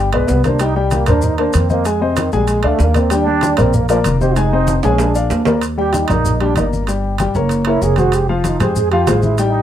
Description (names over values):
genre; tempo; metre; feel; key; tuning
Afro-Cuban jazz; 191 BPM; 4/4; straight; Eb major; A4 = 440 Hz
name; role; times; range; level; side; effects
warm grand piano; accompaniment; 0.0-9.6 s; F3 to Ab5; -18 LUFS; left 4 dB; plate reverb
upright bass; bass; 0.0-9.6 s; F1 to F2; -17 LUFS; equal; none
trombone with plunger mute; second line; 0.1-9.6 s; C3 to Ab4; -19 LUFS; right 7 dB; none
congas; percussion; 0.1-9.6 s; none; -22 LUFS; left 1 dB; none
timbales; percussion; 0.1-9.5 s; none; -24 LUFS; right 8 dB; none
maracas; percussion; 0.3-9.5 s; none; -32 LUFS; left 7 dB; none
room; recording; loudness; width
moderate studio reverb, RT60 0.5 s; rough home demo mix; -13 LUFS; side -10 dB against mid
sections
0.0-5.6 A section; 5.6-9.6 A section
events
trombone solo 0.0-9.6; drum fill 4.7-5.6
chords
0.0 G; 0.6 Cm7; 1.9 Fm7; 2.5 Bb7; 3.1 Ebmaj13; 4.4 Fm7; 5.0 Bb7; 5.6 Ebmaj7; 6.9 Gdim; 7.5 Gbadd9; 8.1 Fm